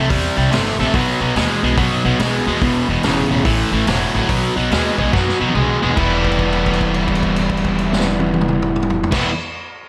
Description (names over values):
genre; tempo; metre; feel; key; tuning
blues rock power trio and southern rock; 143 BPM; 4/4; swing 65% on 8ths; E minor; A4 = 440 Hz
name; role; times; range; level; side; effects
cranked stack guitar; riff; 0.0-9.3 s; E2 to E4; -19 LUFS; equal; overdrive
upright bass; bass; 0.0-9.3 s; E1 to F#2; -25 LUFS; equal; none
vintage drum kit; drums; 0.1-9.2 s; crash cymbal, hi-hat, kick drum, snare drum, toms; -24 LUFS; equal; none
room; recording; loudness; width
light reverb; none; -17 LUFS; mono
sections
0.0-6.0 A section; 6.0-9.3 B section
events
drum fill 5.1-6.0; held note 6.0-9.1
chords
0.0 C; 0.9 B; 2.6 E5; 3.5 A5; 4.3 B5; 6.0 Em